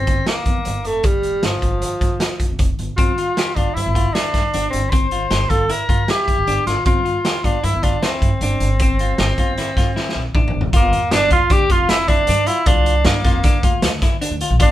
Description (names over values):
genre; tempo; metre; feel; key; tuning
progressive instrumental, band music in an uneven meter; 155 BPM; 5/4; straight; G dorian; A4 = 445 Hz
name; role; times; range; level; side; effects
warm tenor saxophone; melody; 0.0-14.7 s; F3 to C5; -20 LUFS; equal; none
upright bass; bass; 0.0-14.7 s; F1 to G2; -22 LUFS; equal; none
raw garage drum kit; drums; 0.1-14.7 s; hi-hat, kick drum, snare drum, toms; -18 LUFS; equal; none
clean electric guitar; arpeggios; 3.0-14.7 s; C4 to G4; -25 LUFS; left 3 dB; none
room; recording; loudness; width
light reverb; band playing live in one room; -15 LUFS; side -13 dB against mid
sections
0.0-10.7 A section; 10.7-14.7 B section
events
drum fill 10.0-10.7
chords
0.0 G7(no3); 3.0 Bbsus2/G (rootless); 10.7 Gm7